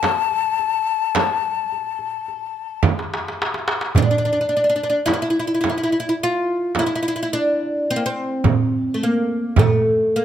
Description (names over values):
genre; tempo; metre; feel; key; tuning
Arabic maqam ensemble; 107 BPM (eighths); 10/8; straight; A maqam kurd; A4 = 440 Hz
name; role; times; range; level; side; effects
oud; melody; 0.0-10.2 s; A3 to A4; -18 LUFS; equal; none
breathy ney; second line; 0.0-2.8 s; A5; -21 LUFS; left 11 dB; none
darbuka; percussion; 0.0-9.8 s; none; -21 LUFS; right 1 dB; none
frame drum; percussion; 0.0-9.8 s; none; -20 LUFS; right 5 dB; none
room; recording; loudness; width
light reverb; close, detailed microphones; -18 LUFS; side -10 dB against mid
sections
0.0-4.0 A section; 4.0-10.2 B section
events
drum fill 2.8-4.0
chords
none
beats
0.03 0.59 1.15 1.71 2.27 2.84 3.40 | 3.96 4.52 5.08 5.64 6.21 6.77 7.33 7.89 8.46 9.02 | 9.58 10.14